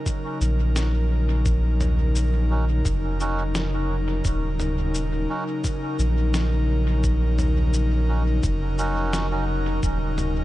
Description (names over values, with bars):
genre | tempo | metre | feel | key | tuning
ambient dub | 86 BPM | 4/4 | straight | Eb minor | A4 = 440 Hz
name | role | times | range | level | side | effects
airy breathy pad | sustained chords | 0.0-10.4 s | Db3 to Bb4 | -28 LUFS | left 1 dB | chorus
electronic kick drum | drums | 0.1-10.0 s | none | -26 LUFS | equal | none
lo-fi sampler-style drum kit | drums | 0.1-10.3 s | shaker, snare drum, toms | -32 LUFS | equal | dub echo
soft dub sub bass | bass | 0.4-10.4 s | Eb1 to Bb1 | -22 LUFS | equal | none
melodica | stabs | 2.5-9.4 s | Db4 to Gb4 | -33 LUFS | right 2 dB | dub echo
room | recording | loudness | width
digital ambience | nothing above 10.9 kHz | -21 LUFS | side -16 dB against mid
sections
0.0-10.4 A section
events
none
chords
0.0 Ebm7